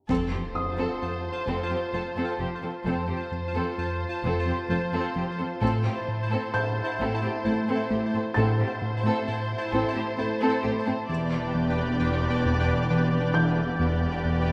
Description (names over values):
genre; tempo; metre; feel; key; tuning
cinematic, suspense film score; 66 BPM; 3/4; straight; unclear; A4 = 439 Hz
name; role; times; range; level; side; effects
felt-muted upright piano; texture; 0.0-14.5 s; Eb6 to A6; -38 LUFS; equal; none
muted chamber violin section; melody; 0.1-14.5 s; C5 to D5; -37 LUFS; equal; none
muted chamber violin section; second line; 0.1-14.5 s; G4 to A4; -37 LUFS; equal; none
muted chamber viola section; accompaniment; 0.1-14.5 s; B3 to C4; -34 LUFS; equal; none
pulsing gated texture; sustained chords; 0.4-14.5 s; D4 to A5; -35 LUFS; equal; chorus, built-in reverb
smooth synth bass; riff; 0.1-14.5 s; E2 to A3; -31 LUFS; equal; none
muted chamber cello section; bass; 0.1-14.5 s; E2 to A2; -36 LUFS; equal; none
muted symphonic double bass section; bass; 0.1-14.5 s; E1 to A1; -36 LUFS; equal; none
impact; sound effects; 0.1-2.9 s; none; -39 LUFS; equal; none
room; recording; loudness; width
wet scoring stage reverb, RT60 1.8 s; none; -27 LUFS; mono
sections
0.1-14.5 A section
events
impact 0.1-2.9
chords
0.1 F; 5.6 Am; 11.1 Em7